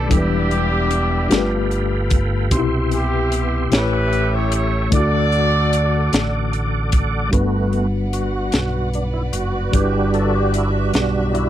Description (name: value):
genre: slow gospel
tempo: 50 BPM (dotted quarters)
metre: 6/8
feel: straight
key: G major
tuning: A4 = 440 Hz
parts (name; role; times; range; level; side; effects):
- warm horn section; melody; 0.0-6.5 s; B3 to D5; -22 LUFS; right 1 dB; none
- mellow tine electric piano; accompaniment; 0.0-11.5 s; G2 to C6; -22 LUFS; left 3 dB; medium stereo tremolo
- tonewheel organ; sustained chords; 0.0-11.5 s; G3 to D6; -24 LUFS; right 2 dB; fast rotary speaker, chorus vibrato
- fingered electric bass; bass; 0.0-11.5 s; E1 to D2; -21 LUFS; equal; none
- tight funk drum kit; drums; 0.1-11.5 s; hi-hat, kick drum, snare drum; -19 LUFS; equal; none
- rich studio string section; sustained chords; 7.3-11.5 s; G3 to F#5; -30 LUFS; right 1 dB; none
room: light reverb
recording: dry, close 1970s-style studio recording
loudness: -16 LUFS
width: side -12 dB against mid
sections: 0.0-7.3 A section; 7.3-11.5 B section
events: tonewheel organ solo 7.3-11.5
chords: 0.1 Em7; 1.3 G9; 2.5 Cmaj7; 3.7 A7; 4.9 D; 7.3 Gmaj7; 9.7 Em7/G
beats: | 0.11 1.31 | 2.51 3.71 | 4.92 6.12 | 7.33 8.53 | 9.73 10.94